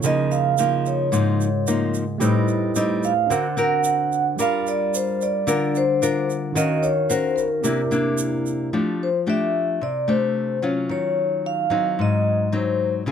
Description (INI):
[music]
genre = bossa nova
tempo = 110 BPM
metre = 4/4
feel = straight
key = unclear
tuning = A4 = 440 Hz
[part]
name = barky tine electric piano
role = accompaniment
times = 0.0-8.7 s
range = Db3 to F#5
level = -27 LUFS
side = right 7 dB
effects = none
[part]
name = nylon-string guitar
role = accompaniment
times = 0.0-13.1 s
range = Ab2 to Bb4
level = -22 LUFS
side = left 2 dB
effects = none
[part]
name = egg shaker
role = percussion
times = 0.0-8.7 s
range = none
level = -31 LUFS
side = right 7 dB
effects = none
[part]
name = vibraphone with medium mallets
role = melody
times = 0.1-12.9 s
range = Bb4 to F#5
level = -22 LUFS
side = right 1 dB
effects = none
[sound]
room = little or no reverb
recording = close, detailed microphones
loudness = -19 LUFS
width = side -8 dB against mid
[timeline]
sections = 0.0-8.7 A section; 8.7-13.1 B section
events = none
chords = 0.0 Db69; 2.2 Am7b5; 3.3 D7b13; 4.4 Gm7; 6.6 Ebm7; 7.6 C9; 8.7 F69; 10.9 Ebm9; 12.0 Ab7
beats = | 0.04 0.58 1.12 1.67 | 2.21 2.75 3.30 3.84 | 4.38 4.93 5.47 6.01 | 6.55 7.10 7.64 8.18 | 8.73 9.27 9.81 10.36 | 10.90 11.44 11.98 12.53 | 13.07